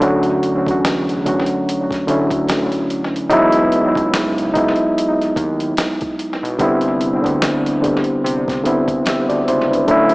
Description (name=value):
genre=lo-fi hip hop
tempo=73 BPM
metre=4/4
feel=swing 59% on 16ths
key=unclear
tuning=A4 = 441 Hz
part: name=overdriven reed electric piano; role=accompaniment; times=0.0-10.1 s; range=D3 to E5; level=-15 LUFS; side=equal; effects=analog delay
part: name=fat analog bass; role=bass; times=0.0-10.1 s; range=B1 to C3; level=-24 LUFS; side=equal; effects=none
part: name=dusty soul sampler-style drum kit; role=drums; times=0.0-10.1 s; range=hi-hat, kick drum, snare drum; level=-24 LUFS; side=equal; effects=analog delay
room=moderate plate reverb, RT60 2.6 s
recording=echo-heavy mix, small speaker sound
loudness=-15 LUFS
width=side -23 dB against mid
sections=0.0-10.1 A section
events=none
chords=0.0 Dmaj9; 3.3 Emaj9; 6.6 Cmaj9